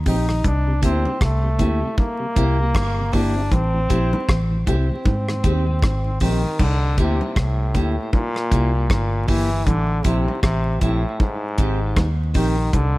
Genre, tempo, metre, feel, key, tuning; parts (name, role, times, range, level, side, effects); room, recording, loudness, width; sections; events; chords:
roots reggae; 78 BPM; 4/4; swing 58% on 16ths; C mixolydian; A4 = 440 Hz
vintage muted fingered electric bass; bass; 0.0-13.0 s; G1 to Ab2; -20 LUFS; equal
brilliant trombone; melody; 0.1-13.0 s; Ab2 to Eb4; -25 LUFS; equal; tape echo
clean electric guitar; accompaniment; 0.1-12.6 s; Bb3 to G4; -28 LUFS; equal; tape echo
mellow tonewheel organ; accompaniment; 0.1-6.5 s; Ab2 to G4; -32 LUFS; left 1 dB; slow rotary speaker
deep reggae drum kit; drums; 0.1-12.9 s; crash cymbal, hi-hat, kick drum, rim click; -21 LUFS; equal
bongos; percussion; 0.1-12.9 s; -31 LUFS; equal
little or no reverb; echo-heavy mix, vinyl crackle; -18 LUFS; side -19 dB against mid
0.0-6.6 A section; 6.6-13.0 A section
0.4 C7; 3.5 Am7; 5.1 Abmaj7; 6.6 C7; 9.7 Am7; 11.2 Abmaj7